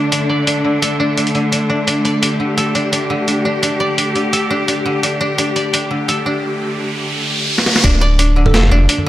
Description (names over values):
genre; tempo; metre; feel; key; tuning
half-time drum and bass; 171 BPM; 4/4; half-time; unclear; A4 = 439 Hz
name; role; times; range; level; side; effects
clear studio cello section; sustained chords; 0.0-7.8 s; D3 to G4; -18 LUFS; equal; vintage 12-bit sampler grit, sidechain pumping
koto; arpeggios; 0.0-9.1 s; D3 to D5; -19 LUFS; equal; low-pass filter, analog delay
boom bap sampler-style drum kit; drums; 0.1-9.0 s; hi-hat, snare drum, toms; -18 LUFS; equal; none
riser; sound effects; 6.3-7.8 s; none; -21 LUFS; right 1 dB; none
saturated sub bass; bass; 7.8-8.9 s; D1 to F1; -12 LUFS; equal; none
electronic kick drum; drums; 7.8-7.9 s; none; -14 LUFS; equal; none
glassy wavetable pluck; melody; 8.5-8.6 s; A4; -23 LUFS; right 5 dB; chorus, analog delay
room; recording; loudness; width
moderate lush hall reverb, RT60 2.0 s; dry, gritty hardware recording; -13 LUFS; side -14 dB against mid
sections
0.0-7.8 A section; 7.8-9.1 B section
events
riser 6.3-7.8; drum fill 7.6; drop 7.8-9.1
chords
0.0 D5